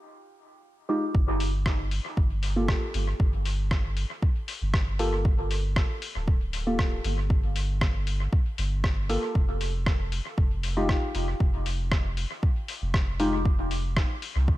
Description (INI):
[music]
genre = dub techno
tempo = 117 BPM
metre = 4/4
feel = straight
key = G minor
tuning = A4 = 442 Hz
[part]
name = deep mellow chord stab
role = stabs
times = 0.9-13.4 s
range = Ab3 to A4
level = -31 LUFS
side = equal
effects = chorus, phaser, cassette tape, sidechain pumping, dub echo
[part]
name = soft dub sub bass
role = bass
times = 1.1-14.6 s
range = D1 to C2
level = -28 LUFS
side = equal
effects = sidechain pumping
[part]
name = electronic kick drum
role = drums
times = 1.1-14.6 s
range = none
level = -25 LUFS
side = equal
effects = none
[part]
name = lo-fi sampler-style drum kit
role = drums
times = 1.4-14.3 s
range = hi-hat, rim click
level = -34 LUFS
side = left 1 dB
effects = dub echo
[sound]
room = little or no reverb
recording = echo-heavy mix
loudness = -24 LUFS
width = side -16 dB against mid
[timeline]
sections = 0.0-1.1 A section; 1.1-14.6 B section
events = filter sweep on synth stab 0.0-1.1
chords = 0.0 Fm9; 1.1 Gm9; 9.4 Fm9